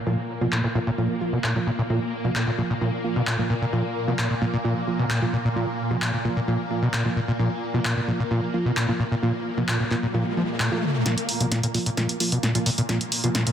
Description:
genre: driving peak-time techno.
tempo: 131 BPM.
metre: 4/4.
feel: straight.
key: unclear.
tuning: A4 = 440 Hz.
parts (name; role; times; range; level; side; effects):
swarming drone; drone; 0.0-13.5 s; Bb2 to Bb3; -30 LUFS; equal; built-in reverb, phaser.
overdriven acid bass; riff; 0.1-13.5 s; Bb2 to Bb3; -25 LUFS; left 1 dB; distortion.
wavetable chord stab; stabs; 0.1-13.4 s; F3 to F4; -28 LUFS; right 2 dB; dub echo.
punchy analog drum machine; drums; 0.5-13.5 s; handclaps, hi-hat, snare drum; -29 LUFS; equal; low-pass filter on hats, low-pass filter on cymbals, low-pass filter on snare.
riser; sound effects; 9.2-11.1 s; none; -34 LUFS; equal; none.
room: moderate lush hall reverb, RT60 2.5 s.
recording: dense, heavily limited modern master.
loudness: -22 LUFS.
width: side -9 dB against mid.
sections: 0.0-11.1 A section; 11.1-13.5 B section.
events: riser 9.2-11.1; build-up 11.1-13.5; drum fill 11.1-13.5; filter sweep on synth stab 11.1-13.5.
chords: 0.0 Bb5.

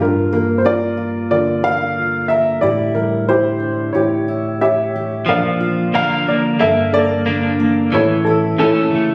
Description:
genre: acoustic folk-pop ballad.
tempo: 91 BPM.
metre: 4/4.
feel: straight.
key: unclear.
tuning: A4 = 439 Hz.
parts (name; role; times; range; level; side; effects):
warm baby grand piano; melody; 0.0-9.1 s; C#4 to F5; -19 LUFS; equal; none.
fingerpicked steel-string acoustic guitar; accompaniment; 0.0-9.1 s; G2 to Bb4; -22 LUFS; equal; none.
electric guitar at the edge of break-up; arpeggios; 5.3-9.1 s; E3 to Bb4; -21 LUFS; equal; tremolo.
room: light reverb.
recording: recorded on a phone in the room, club reverb, compression.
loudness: -17 LUFS.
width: mono.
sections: 0.0-5.3 A section; 5.3-9.1 B section.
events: none.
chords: 0.0 Gm7; 2.6 A7sus4; 5.3 Bb; 6.6 Gmadd9; 7.9 A.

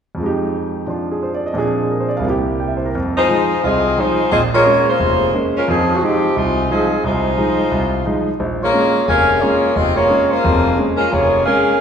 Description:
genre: jazz.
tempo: 176 BPM.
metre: 4/4.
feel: swing 62% on 8ths.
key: F minor.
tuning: A4 = 440 Hz.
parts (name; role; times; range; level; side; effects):
clear grand piano; accompaniment; 0.1-11.7 s; F1 to G5; -18 LUFS; right 1 dB; none.
warm saxophone section; melody; 3.2-11.8 s; F3 to F5; -15 LUFS; left 1 dB; none.
room: wet scoring stage reverb, RT60 1.9 s.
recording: recorded in a church or concert hall.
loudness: -14 LUFS.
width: side -7 dB against mid.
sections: 0.2-2.9 A section; 2.9-11.8 B section.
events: none.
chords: 0.2 Fm7; 1.6 Bb7; 2.2 C7; 2.9 Fm7; 4.3 Bbm7; 5.7 Fm7; 8.4 Bbm7.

